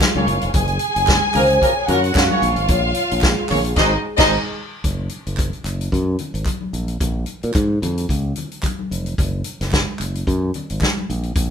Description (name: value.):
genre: disco.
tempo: 111 BPM.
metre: 4/4.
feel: swing 56% on 16ths.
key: unclear.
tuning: A4 = 441 Hz.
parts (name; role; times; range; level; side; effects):
vibraphone with soft mallets; melody; 0.0-4.5 s; Ab4 to F5; -22 LUFS; left 1 dB; none.
dark studio string section; second line; 0.0-4.4 s; Eb4 to Ab5; -20 LUFS; equal; none.
vintage drum kit; drums; 0.0-11.5 s; crash cymbal, hi-hat, kick drum, snare drum; -21 LUFS; equal; none.
congas; percussion; 0.0-11.5 s; none; -30 LUFS; left 4 dB; none.
group handclap; percussion; 0.0-10.9 s; none; -32 LUFS; right 2 dB; none.
mellow horn section; stabs; 0.2-4.3 s; Gb3 to Db5; -23 LUFS; equal; none.
modern bright fingered electric bass; bass; 0.2-11.5 s; F1 to Bb2; -22 LUFS; equal; none.
room: moderate studio reverb, RT60 0.8 s.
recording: band playing live in one room.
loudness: -17 LUFS.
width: side -7 dB against mid.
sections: 0.0-4.8 A section; 4.8-11.5 B section.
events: band accent 3.8-4.8.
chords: 0.0 Bbm7; 0.5 Gbmaj7; 2.4 Bbm7; 3.8 Ab7; 4.8 N.C.; 6.7 Bbm7; 9.2 N.C..